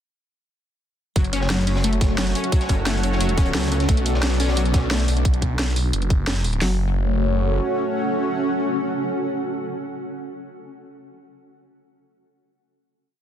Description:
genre	dark technical drum and bass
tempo	176 BPM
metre	4/4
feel	straight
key	F# minor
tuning	A4 = 440 Hz
part	sweeping resonant pad	sustained chords	1.2-9.8 s	A3 to D5	-28 LUFS	equal	chorus, sidechain pumping
part	wide unison pluck	arpeggios	1.2-6.8 s	F#3 to C#4	-27 LUFS	left 4 dB	cassette tape, sidechain pumping, ping-pong delay
part	phased detuned saw bass	bass	1.2-7.6 s	F#1 to B1	-22 LUFS	equal	phaser, overdrive, sidechain pumping
part	crunchy breakbeat drum kit	drums	1.2-5.2 s	hi-hat, snare drum	-34 LUFS	equal	none
part	drum and bass drum kit	drums	1.2-6.7 s	hi-hat, kick drum, snare drum	-20 LUFS	equal	none
part	drum and bass drum kit	drums	1.2-6.6 s	hi-hat, snare drum	-27 LUFS	right 1 dB	none
part	granular cloud pad	texture	2.3-9.9 s	C#4 to F#5	-27 LUFS	equal	built-in reverb, sidechain pumping
part	pulsing pluck wobble bass	bass	2.7-3.9 s	F#1 to C#2	-22 LUFS	equal	chorus
room	light reverb, digital ambience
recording	dense, heavily limited modern master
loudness	-19 LUFS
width	side -10 dB against mid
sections	1.2-6.6 drop; 6.6-9.3 final chord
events	drop 1.2-6.6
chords	1.2 F#m; 3.9 Bm; 6.6 F#m

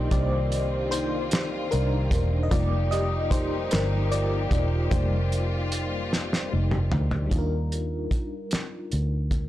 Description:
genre	slow six-eight R&B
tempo	50 BPM (dotted quarters)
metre	6/8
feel	straight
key	unclear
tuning	A4 = 440 Hz
part	FM electric piano with tremolo	accompaniment	0.0-9.5 s	Eb3 to Eb5	-29 LUFS	left 2 dB	phaser
part	warm studio string section	sustained chords	0.0-7.3 s	Eb3 to G4	-34 LUFS	equal	none
part	vintage muted fingered electric bass	bass	0.0-9.5 s	E1 to Eb2	-26 LUFS	equal	transformer saturation
part	cloth-damped thuddy drum kit	drums	0.1-9.5 s	hi-hat, kick drum, snare drum, toms	-26 LUFS	equal	none
room	little or no reverb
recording	blown-out, overdriven recording, overdrive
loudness	-23 LUFS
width	side -14 dB against mid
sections	0.0-7.3 A section; 7.3-9.5 B section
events	FM electric piano solo 0.0-7.3; drum fill 6.1-7.3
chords	0.0 Cm7; 7.3 Ebmaj9

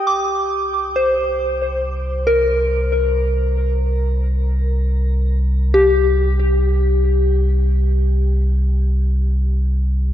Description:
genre	ambient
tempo	free time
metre	none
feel	none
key	unclear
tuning	A4 = 439 Hz
part	soft synth bell	arpeggios	0.0-10.1 s	G4 to Eb6	-19 LUFS	left 1 dB	chorus, tape echo, shimmer reverb
part	warm sub bass	bass	0.1-10.1 s	C2	-17 LUFS	equal	none
room	moderate lush hall reverb, RT60 2.7 s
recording	none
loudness	-15 LUFS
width	side -12 dB against mid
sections	0.1-10.1 A section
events	none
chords	0.1 C7sus2

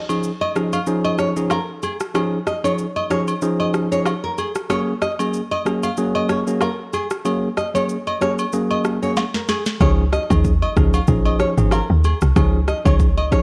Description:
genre	afrobeats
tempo	94 BPM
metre	4/4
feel	swing 55% on 16ths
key	Db major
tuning	A4 = 441 Hz
part	bell-like tine electric piano	accompaniment	0.1-13.4 s	F3 to Ab4	-24 LUFS	equal	none
part	afro-pop drum kit	drums	0.1-13.4 s	kick drum, rim click, shaker, snare drum	-24 LUFS	equal	none
part	agogo bells and woodblock	percussion	0.1-13.3 s	none	-30 LUFS	equal	none
part	nylon-string guitar	riff	0.4-13.4 s	Ab4 to F5	-27 LUFS	equal	slapback echo
part	woody log drum bass	bass	9.8-13.3 s	Ab1 to Eb2	-20 LUFS	equal	none
room	light reverb, digital ambience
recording	worn, warbling old tape, cassette tape, warbly pitch drift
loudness	-19 LUFS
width	mono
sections	0.0-13.4 A section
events	break 0.0-9.8; drum fill 9.2-9.8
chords	0.0 Dbadd9; 4.7 Gbadd9; 9.8 Dbadd9

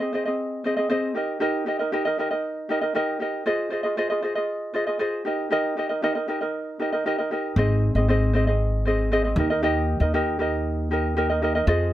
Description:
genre	acoustic pop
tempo	117 BPM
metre	4/4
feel	straight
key	Eb major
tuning	A4 = 441 Hz
part	ukulele	accompaniment	0.0-11.9 s	C4 to Eb5	-23 LUFS	equal	none
part	upright bass	bass	7.6-11.9 s	Ab1 to F2	-23 LUFS	equal	none
room	little or no reverb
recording	none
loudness	-22 LUFS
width	side -13 dB against mid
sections	0.0-7.6 A section; 7.6-11.9 B section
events	none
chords	0.0 Ab; 1.2 Eb; 3.5 Fm7; 5.3 Eb; 7.6 Ab; 9.4 Eb

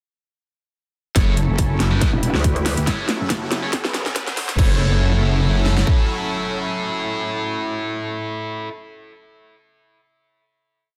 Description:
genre	heavy wobble dubstep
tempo	140 BPM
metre	4/4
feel	swing 54% on 16ths, half-time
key	F# phrygian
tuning	A4 = 437 Hz
part	supersaw pad	sustained chords	1.2-8.7 s	D3 to B4	-31 LUFS	equal	phaser, sidechain pumping
part	high-gain distorted guitar	stabs	1.2-8.7 s	E4 to C#5	-29 LUFS	equal	distortion, digital delay
part	wobble bass	bass	1.2-5.8 s	F#1 to D2	-22 LUFS	equal	chorus, overdrive
part	dubstep drum kit	drums	1.2-6.0 s	kick drum, snare drum	-21 LUFS	equal	small room ambience
part	dubstep drum kit	drums	1.2-4.7 s	crash cymbal, hi-hat, rim click, snare drum	-27 LUFS	equal	small room ambience
part	riser and impact	sound effects	3.0-8.7 s	none	-34 LUFS	equal	none
part	metallic wobble bass	bass	2.1-4.0 s	E1 to D2	-23 LUFS	equal	chorus, overdrive
room	light reverb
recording	dense, heavily limited modern master, high-pass filter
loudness	-20 LUFS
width	mono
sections	1.2-4.6 build; 4.6-8.0 final chord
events	build-up 1.2-4.6; drum fill 1.2-4.6; filter sweep 1.2-4.6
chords	1.2 F#m7; 2.0 Em; 2.9 F#m7; 3.7 Bmadd9; 4.6 F#m7

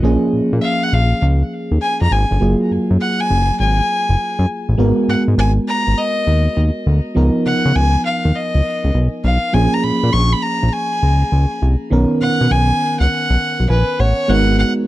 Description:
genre	R&B, new jack swing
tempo	101 BPM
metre	4/4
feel	swing 66% on 16ths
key	G# dorian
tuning	A4 = 440 Hz
part	FM electric piano	accompaniment	0.0-14.9 s	D#3 to G#5	-19 LUFS	right 1 dB	chorus
part	fat analog bass	bass	0.0-14.6 s	F#1 to C#3	-14 LUFS	equal	none
part	rich fiddle	melody	0.6-14.7 s	B4 to C#6	-20 LUFS	equal	none
room	light reverb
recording	dry, close 1970s-style studio recording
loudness	-14 LUFS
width	side -16 dB against mid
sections	0.0-4.8 A section; 4.8-14.3 B section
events	FM electric piano fill 13.4-14.3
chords	0.0 A#m7; 2.4 F#maj9; 4.8 G#m9; 7.2 C#13; 9.5 A#m7; 11.9 Bmaj9; 14.3 G#m9

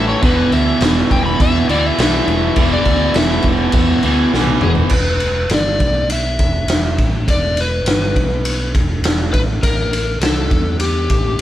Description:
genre	blues rock power trio and southern rock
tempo	102 BPM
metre	4/4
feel	straight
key	unclear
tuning	A4 = 442 Hz
part	overdriven slide guitar	melody	0.0-11.4 s	G4 to B5	-20 LUFS	left 2 dB	none
part	distorted electric guitar	riff	0.0-4.9 s	E2 to A3	-16 LUFS	right 1 dB	distortion
part	overdriven fingered electric bass	bass	0.0-11.4 s	E1 to E2	-20 LUFS	equal	none
part	raw garage drum kit	drums	0.2-11.4 s	crash cymbal, kick drum, ride cymbal, snare drum, toms	-16 LUFS	equal	none
room	light reverb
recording	band playing live in one room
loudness	-13 LUFS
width	side -12 dB against mid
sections	0.0-4.9 A section; 4.9-11.4 B section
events	electric slide guitar solo 0.0-4.9; drum fill 4.3-4.9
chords	0.2 E5; 9.6 A5

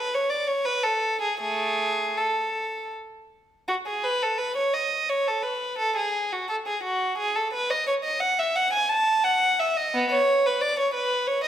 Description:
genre	classical, baroque-style suite movement for unaccompanied violin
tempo	76-90 BPM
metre	3/4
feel	rubato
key	A major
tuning	A4 = 440 Hz
part	rich violin	solo	0.0-11.5 s	A3 to A5	-22 LUFS	equal	none
room	wet recital hall reverb, RT60 1.4 s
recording	minimal, uncompressed stereo recording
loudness	-22 LUFS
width	side -10 dB against mid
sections	0.0-3.7 A section; 3.7-11.5 A section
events	none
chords	none

